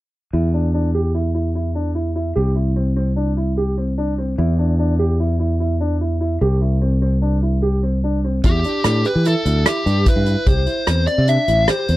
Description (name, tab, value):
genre	progressive instrumental, band music in an uneven meter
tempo	148 BPM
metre	5/4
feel	straight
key	E minor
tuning	A4 = 443 Hz
part	dark grand piano	arpeggios	0.3-12.0 s	C4 to G4	-23 LUFS	right 1 dB	none
part	fingered electric bass	bass	0.3-12.0 s	A1 to E3	-18 LUFS	equal	none
part	soft-mallet drum kit	drums	8.4-12.0 s	hi-hat, kick drum, rim click	-19 LUFS	equal	none
part	fuzz lead guitar	melody	8.5-12.0 s	G4 to E5	-20 LUFS	left 1 dB	distortion
room	little or no reverb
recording	dry, close 1970s-style studio recording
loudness	-16 LUFS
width	side -16 dB against mid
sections	0.3-8.4 A section; 8.4-12.0 B section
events	none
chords	0.3 E7(no3); 2.4 C; 4.4 E7(no3); 6.4 C; 8.4 Em7; 10.5 C6